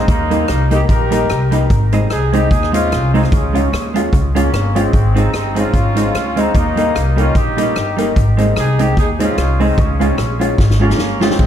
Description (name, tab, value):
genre	ska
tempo	148 BPM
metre	4/4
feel	swing 56% on 8ths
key	Ab major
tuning	A4 = 440 Hz
part	clear horn section	melody	0.0-11.5 s	Ab3 to Bb4	-20 LUFS	left 1 dB	dub echo
part	clean electric guitar	accompaniment	0.0-11.4 s	G3 to F4	-20 LUFS	right 5 dB	tremolo, dub echo
part	dark upright piano	stabs	0.0-11.3 s	Eb4 to F5	-22 LUFS	left 4 dB	dub echo
part	upright bass	bass	0.0-11.5 s	G1 to Eb2	-16 LUFS	equal	none
part	swinging big-band drum kit	drums	0.1-11.5 s	crash cymbal, hi-hat, kick drum, rim click, snare drum	-18 LUFS	equal	none
room	light reverb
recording	none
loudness	-12 LUFS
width	side -10 dB against mid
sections	0.0-11.5 A section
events	drum fill 10.6-11.4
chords	0.1 Eb; 1.7 Ab; 3.3 Db; 4.9 Ab; 6.5 Eb; 8.2 Ab; 9.8 Db